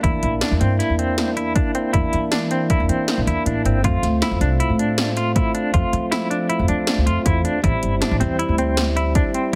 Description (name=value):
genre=progressive instrumental, band music in an uneven meter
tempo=158 BPM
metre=5/4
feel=straight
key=unclear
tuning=A4 = 440 Hz
part: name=tonewheel organ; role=accompaniment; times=0.0-9.6 s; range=G3 to F4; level=-26 LUFS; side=equal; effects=stopped rotary speaker
part: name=semi-hollow electric guitar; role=arpeggios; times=0.0-9.5 s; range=C4 to F4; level=-26 LUFS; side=equal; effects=tremolo
part: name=upright bass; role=bass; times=0.0-9.2 s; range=G1 to F3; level=-24 LUFS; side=equal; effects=none
part: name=80s electronic pad drums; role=drums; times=0.0-9.4 s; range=hi-hat, kick drum, snare drum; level=-24 LUFS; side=equal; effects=none
room=light reverb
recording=heavily compressed radio sound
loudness=-20 LUFS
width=mono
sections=0.0-9.6 A section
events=none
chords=0.0 C7; 3.8 F; 7.6 Am7 (rootless)